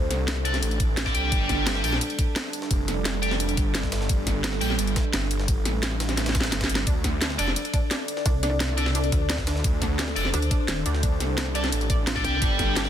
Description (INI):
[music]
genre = dark technical drum and bass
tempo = 173 BPM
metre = 4/4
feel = straight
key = D minor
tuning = A4 = 440 Hz
[part]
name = dark analog pad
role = sustained chords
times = 0.0-12.9 s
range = G3 to D5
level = -31 LUFS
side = right 2 dB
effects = chorus, phaser, sidechain pumping
[part]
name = wide detuned saw bass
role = bass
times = 0.0-7.5, 9.6-12.9 s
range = F1 to D2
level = -27 LUFS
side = equal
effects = chorus, overdrive, sidechain pumping
[part]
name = drum and bass drum kit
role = drums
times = 0.1-12.9 s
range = hi-hat, snare drum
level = -28 LUFS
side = left 1 dB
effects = none
[part]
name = jungle sampler-style drum kit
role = drums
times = 0.1-12.9 s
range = hi-hat, ride cymbal, snare drum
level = -36 LUFS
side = right 1 dB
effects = high-pass filter on cymbals, high-pass filter on snare, high-pass filter on hats, high-pass filter on room
[part]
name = sludgy distorted guitar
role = stabs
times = 0.5-4.7, 7.4-12.9 s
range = D4 to G5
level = -30 LUFS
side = left 2 dB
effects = overdrive, ping-pong delay
[part]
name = electronic kick drum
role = drums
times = 0.8-12.7 s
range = none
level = -25 LUFS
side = equal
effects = none
[part]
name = analog pluck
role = arpeggios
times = 6.9-12.8 s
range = D4 to D5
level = -35 LUFS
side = right 3 dB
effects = chorus, sidechain pumping, ping-pong delay
[part]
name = pulsing pluck wobble bass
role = bass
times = 8.3-12.4 s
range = Eb1 to D2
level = -26 LUFS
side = equal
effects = chorus
[sound]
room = digital ambience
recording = dense, heavily limited modern master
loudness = -22 LUFS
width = side -10 dB against mid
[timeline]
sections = 0.0-12.9 A section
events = drum fill 6.2-6.9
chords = 0.0 D5; 1.3 G5; 6.9 D5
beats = 0.28 0.63 0.97 | 1.32 1.67 2.01 2.36 | 2.71 3.05 3.40 3.75 | 4.09 4.44 4.79 5.13 | 5.48 5.83 6.17 6.52 | 6.87 7.22 7.56 7.91 | 8.26 8.60 8.95 9.30 | 9.64 9.99 10.34 10.68 | 11.03 11.38 11.72 12.07 | 12.42 12.77